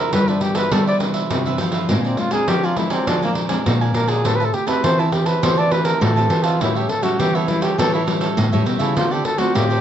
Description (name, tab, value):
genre	samba and choro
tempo	102 BPM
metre	4/4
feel	straight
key	unclear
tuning	A4 = 440 Hz
part	warm flugelhorn	melody	0.0-9.8 s	Bb3 to D5	-21 LUFS	equal	plate reverb
part	cavaquinho	accompaniment	0.0-9.8 s	D4 to A5	-26 LUFS	right 6 dB	none
part	nylon-string guitar	accompaniment	0.0-9.8 s	G2 to B4	-25 LUFS	left 2 dB	none
part	nylon-string guitar	bass	0.1-9.8 s	A2 to G3	-21 LUFS	left 1 dB	none
part	pandeiro	percussion	0.1-9.8 s	none	-23 LUFS	right 2 dB	none
room	moderate small room reverb, RT60 0.6 s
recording	nothing above 7.6 kHz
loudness	-16 LUFS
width	side -10 dB against mid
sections	0.0-9.8 A section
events	flugelhorn solo 0.0-9.8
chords	0.0 Cmaj9; 1.9 Bb9; 4.2 Am9; 6.6 A7; 9.0 Dm7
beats	0.13 0.72 1.31 | 1.90 2.48 3.07 3.66 | 4.25 4.84 5.43 6.02 | 6.61 7.19 7.78 8.37 | 8.96 9.55